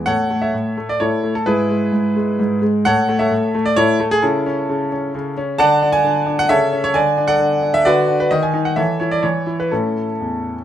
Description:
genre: classical-period piano sonatina.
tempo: 130 BPM.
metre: 3/4.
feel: rubato.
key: A major.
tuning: A4 = 444 Hz.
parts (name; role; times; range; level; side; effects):
clear grand piano; solo; 0.0-10.6 s; E2 to A5; -15 LUFS; equal; none.
room: moderate large studio reverb, RT60 1.1 s.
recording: none.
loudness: -15 LUFS.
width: side -10 dB against mid.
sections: 0.1-10.6 A section.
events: none.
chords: 0.1 A; 1.5 E/G#; 2.8 A; 4.2 A/C#; 5.6 D; 6.5 A/C#; 6.9 D; 7.9 Bm/D; 8.3 N.C.; 8.8 A/E; 9.2 N.C.; 9.7 A.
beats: | 0.07 0.53 1.00 | 1.46 1.92 2.38 | 2.85 3.31 3.77 | 4.23 4.69 5.14 | 5.59 6.04 6.50 | 6.95 7.40 7.86 | 8.31 8.77 9.24 | 9.72 10.21.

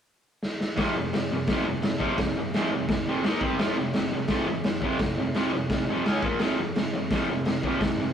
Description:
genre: garage rock duo or trio.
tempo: 171 BPM.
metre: 4/4.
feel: straight.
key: unclear.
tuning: A4 = 441 Hz.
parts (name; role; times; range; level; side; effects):
raw garage drum kit; drums; 0.4-7.9 s; hi-hat, kick drum, snare drum; -27 LUFS; equal; none.
fuzz guitar; riff; 0.8-8.1 s; F2 to Eb4; -26 LUFS; equal; distortion.
room: moderate stone room reverb, RT60 1.1 s.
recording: rough rehearsal-room recording.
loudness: -24 LUFS.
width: side -8 dB against mid.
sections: 0.8-8.1 A section.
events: drum fill 0.4-0.8.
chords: 0.0 N.C.; 0.8 F5; 3.2 Eb5; 3.4 C5; 3.6 F5; 6.1 Db5; 6.2 Bb5; 6.4 F5.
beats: 0.07 0.42 | 0.78 1.13 1.48 1.83 | 2.18 2.54 2.89 3.24 | 3.59 3.94 4.29 4.65 | 5.00 5.35 5.70 6.05 | 6.40 6.75 7.11 7.46 | 7.81.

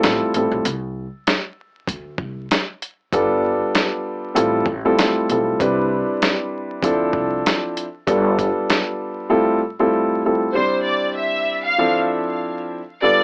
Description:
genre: hip hop, boom-bap hip-hop.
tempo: 97 BPM.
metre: 4/4.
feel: swing 55% on 16ths.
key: unclear.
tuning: A4 = 439 Hz.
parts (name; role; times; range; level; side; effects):
dark grand piano; accompaniment; 0.0-13.2 s; A2 to C5; -21 LUFS; equal; cassette tape, high-pass filter, low-pass filter.
upright bass; bass; 0.0-8.5 s; G1 to D2; -30 LUFS; equal; none.
dusty soul sampler-style drum kit; drums; 0.0-8.9 s; hi-hat, kick drum, snare drum; -22 LUFS; equal; overdrive.
warm symphonic violin section; melody; 10.5-13.2 s; C5 to F5; -22 LUFS; equal; high-pass filter, low-pass filter.
room: light reverb.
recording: vinyl crackle, AM radio sound.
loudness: -20 LUFS.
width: mono.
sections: 0.0-10.5 A section; 10.5-13.2 B section.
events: break 0.7-3.1.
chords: 0.0 Fmaj7/A; 0.7 N.C.; 1.9 Csus2; 3.1 G7; 4.4 Fmaj7/A; 5.6 Cmaj7; 6.8 Dm7; 8.1 G7; 9.3 Fmaj7/A; 10.5 C; 11.8 Dm7.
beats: 0.03 | 0.65 1.27 1.89 2.51 | 3.13 3.75 4.36 4.98 | 5.60 6.22 6.84 7.46 | 8.07 8.69 9.31 9.93 | 10.55 11.17 11.79 12.40 | 13.02.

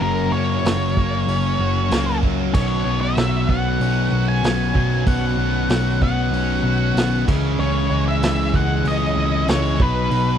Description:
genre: classic rock.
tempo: 95 BPM.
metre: 4/4.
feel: straight.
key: unclear.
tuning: A4 = 441 Hz.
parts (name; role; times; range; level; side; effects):
octave-fuzz lead guitar; melody; 0.0-10.4 s; A#4 to G#5; -24 LUFS; left 2 dB; distortion.
distorted electric guitar; riff; 0.0-10.4 s; F#2 to F#4; -26 LUFS; right 20 dB; overdrive.
sludgy distorted guitar; riff; 0.0-10.4 s; F#2 to D#4; -23 LUFS; left 11 dB; overdrive.
hollow-body short-scale picked electric bass; bass; 0.0-10.4 s; F#1 to C#2; -22 LUFS; right 1 dB; none.
vintage drum kit; drums; 0.7-10.3 s; crash cymbal, hi-hat, kick drum, snare drum; -22 LUFS; right 1 dB; none.
bright tonewheel organ; sustained chords; 2.5-10.4 s; F#3 to C#5; -34 LUFS; right 1 dB; none.
room: little or no reverb.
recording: dry, close 1970s-style studio recording.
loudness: -17 LUFS.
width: side -9 dB against mid.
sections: 0.0-10.4 A section.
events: none.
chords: 0.0 F#; 2.5 Bsus2; 7.3 C#m; 9.8 B.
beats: | 0.02 0.65 1.28 1.91 | 2.54 3.18 3.81 4.44 | 5.07 5.70 6.33 6.96 | 7.59 8.22 8.85 9.48 | 10.11.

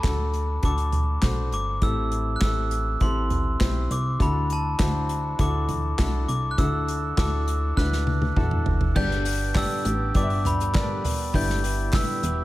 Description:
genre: piano-driven pop.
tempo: 101 BPM.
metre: 4/4.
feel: straight.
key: G major.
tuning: A4 = 438 Hz.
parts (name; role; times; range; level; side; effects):
glockenspiel with brass mallets; melody; 0.0-12.4 s; A5 to G6; -29 LUFS; equal; none.
clear concert grand piano; accompaniment; 0.0-12.4 s; G2 to E5; -31 LUFS; left 4 dB; none.
plucky analog bass; bass; 0.0-12.4 s; E1 to E2; -26 LUFS; equal; none.
unplugged drum kit; drums; 0.0-12.4 s; crash cymbal, handclaps, hi-hat, kick drum, snare drum, toms; -26 LUFS; equal; none.
direct-recorded clean electric guitar; riff; 9.0-12.4 s; G2 to G4; -32 LUFS; right 5 dB; none.
group handclap; percussion; 9.6-12.1 s; none; -42 LUFS; left 2 dB; none.
room: small room reverb.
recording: none.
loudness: -22 LUFS.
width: side -16 dB against mid.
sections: 0.0-9.0 A section; 9.0-12.4 B section.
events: drum fill 7.8-9.0.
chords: 0.0 D; 1.8 Am7; 4.2 Dadd9; 9.0 G; 11.3 Em7.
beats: 0.04 0.63 1.23 | 1.82 2.42 3.01 3.60 | 4.20 4.79 5.39 5.98 | 6.58 7.17 7.77 8.36 | 8.96 9.55 10.15 10.74 | 11.34 11.93.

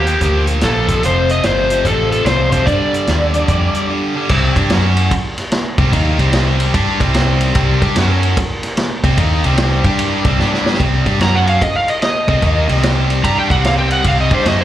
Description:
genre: blues rock power trio and southern rock.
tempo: 148 BPM.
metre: 4/4.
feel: swing 65% on 8ths.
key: C minor from 4.3 s.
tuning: A4 = 440 Hz.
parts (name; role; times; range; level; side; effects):
overdriven slide guitar; melody; 0.0-3.8, 11.2-14.6 s; G4 to Bb5; -17 LUFS; equal; plate reverb, slapback echo.
distorted electric guitar; riff; 0.0-14.6 s; F2 to G4; -18 LUFS; equal; overdrive, slapback echo.
vintage muted fingered electric bass; bass; 0.0-14.6 s; F1 to G2; -16 LUFS; equal; none.
vintage drum kit; drums; 0.1-14.6 s; crash cymbal, hi-hat, kick drum, ride cymbal, snare drum; -18 LUFS; equal; none.
room: light reverb.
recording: live gig heard through the venue's PA, club reverb.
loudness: -12 LUFS.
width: side -12 dB against mid.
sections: 0.0-4.3 A section; 4.3-10.8 B section; 10.8-14.6 C section.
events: break 3.9-4.3; drum fill 10.4-10.8; electric slide guitar solo 10.8-14.6.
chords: 0.0 Bb; 0.8 F; 2.7 G5; 4.3 C5; 4.7 F#5; 5.7 Cm; 8.0 F#5; 9.0 Cm; 9.8 G5; 10.2 C5; 10.4 G5; 10.8 C5; 11.2 F#5; 12.2 Cm.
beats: 0.21 0.62 | 1.03 1.44 1.85 2.26 | 2.67 3.07 3.48 3.89 | 4.30 4.70 5.11 5.52 | 5.92 6.33 6.74 7.14 | 7.55 7.96 8.36 8.77 | 9.18 9.58 9.99 10.39 | 10.80 11.21 11.61 12.02 | 12.43 12.83 13.24 13.65 | 14.05 14.46.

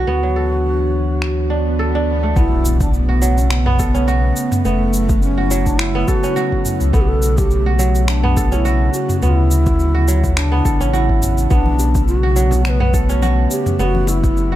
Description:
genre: organic downtempo.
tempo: 105 BPM.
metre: 4/4.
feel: swing 54% on 16ths.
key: B minor.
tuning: A4 = 441 Hz.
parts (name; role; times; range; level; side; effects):
breathy mellow low ney; melody; 0.0-14.6 s; A3 to C#5; -22 LUFS; right 1 dB; analog delay, shimmer reverb.
warbly tape-like pad; sustained chords; 0.0-14.6 s; C#3 to C#5; -24 LUFS; left 2 dB; chorus, built-in reverb, sidechain pumping.
kora; arpeggios; 0.0-14.6 s; F#3 to B4; -22 LUFS; right 3 dB; dub echo, shimmer reverb.
warm sub bass; bass; 0.0-14.6 s; F#1 to D2; -17 LUFS; equal; sidechain pumping.
afro-pop drum kit; drums; 1.2-14.5 s; finger snaps, shaker, toms; -24 LUFS; equal; overdrive.
swell and impact; sound effects; 1.4-4.7 s; none; -27 LUFS; right 2 dB; none.
electronic kick drum; drums; 2.4-14.3 s; none; -18 LUFS; equal; overdrive.
bongos and congas; percussion; 11.5-14.2 s; none; -29 LUFS; left 3 dB; none.
room: light reverb, digital ambience.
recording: echo-heavy mix.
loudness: -14 LUFS.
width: side -13 dB against mid.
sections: 0.0-2.4 A section; 2.4-14.6 B section.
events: swell 1.4-2.4; impact 2.4-4.7.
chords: 0.1 Dmaj9; 2.4 Bsus2; 4.7 F#m7; 6.9 Bsus2; 9.2 Dmaj9; 11.5 Bm9; 13.8 F#m7.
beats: | 0.08 0.65 1.22 1.79 | 2.37 2.94 3.51 4.08 | 4.65 5.22 5.79 6.37 | 6.94 7.51 8.08 8.65 | 9.22 9.79 10.37 10.94 | 11.51 12.08 12.65 13.22 | 13.79 14.37.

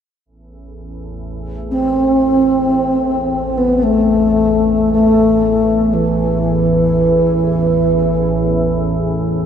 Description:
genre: world meditative, free-time meditation music.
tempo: free time.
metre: none.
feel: none.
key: A hirajoshi.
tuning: A4 = 442 Hz.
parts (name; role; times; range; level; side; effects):
organ-like drone; drone; 0.6-9.5 s; A1 to E2; -21 LUFS; equal; ensemble chorus, built-in reverb.
mellow bass flute; melody; 1.7-9.5 s; E3 to C4; -13 LUFS; equal; diffuse ambient delay.
room: wet huge ambient reverb, RT60 4.9 s.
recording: dark, warm production.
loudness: -12 LUFS.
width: side -8 dB against mid.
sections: 0.3-9.5 A section.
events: none.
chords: none.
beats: free time.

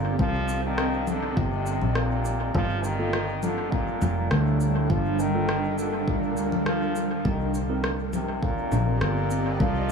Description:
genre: ambient dub.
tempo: 102 BPM.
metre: 4/4.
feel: straight.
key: G minor.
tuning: A4 = 440 Hz.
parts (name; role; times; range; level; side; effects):
bright trombone; melody; 0.0-9.9 s; A2 to G3; -29 LUFS; left 1 dB; dub echo.
granular cloud pad; sustained chords; 0.0-9.9 s; G3 to Eb5; -29 LUFS; right 1 dB; built-in reverb.
fingered electric bass; bass; 0.0-9.9 s; F1 to D2; -27 LUFS; right 1 dB; none.
electronic kick drum; drums; 0.2-9.7 s; none; -29 LUFS; equal; none.
electronic shaker, rim click and congas; drums; 0.5-9.9 s; none; -33 LUFS; left 2 dB; dub echo.
mellow tine electric piano; stabs; 3.0-7.9 s; Bb3 to Bb4; -37 LUFS; right 1 dB; none.
room: light reverb.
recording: studio ambience.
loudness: -23 LUFS.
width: side -6 dB against mid.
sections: 0.0-9.9 A section.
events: none.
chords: 0.0 Cm7; 2.5 Gm9; 7.3 Cm7.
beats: | 0.19 0.78 1.37 1.96 | 2.55 3.13 3.72 4.31 | 4.90 5.49 6.08 6.66 | 7.25 7.84 8.43 9.02 | 9.61.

